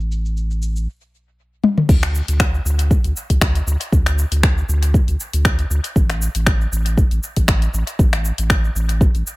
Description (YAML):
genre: afro house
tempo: 118 BPM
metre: 4/4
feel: swing 55% on 16ths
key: unclear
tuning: A4 = 437 Hz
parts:
  - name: warm sub bass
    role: bass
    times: 0.0-9.2 s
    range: A1 to D2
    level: -19 LUFS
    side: equal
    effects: sidechain pumping
  - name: afro-pop drum kit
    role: drums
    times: 0.0-9.4 s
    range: crash cymbal, finger snaps, hi-hat, shaker, toms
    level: -22 LUFS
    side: left 2 dB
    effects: small room ambience, dub echo
  - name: electronic kick drum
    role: drums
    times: 1.9-9.1 s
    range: none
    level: -16 LUFS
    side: equal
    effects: small room ambience
room: digital ambience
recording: echo-heavy mix, low-pass filter, faint mains hum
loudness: -15 LUFS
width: side -20 dB against mid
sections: 0.0-1.9 A section; 1.9-9.4 B section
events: filter sweep 0.0-1.9; drum fill 1.6; drop 1.9-9.4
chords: none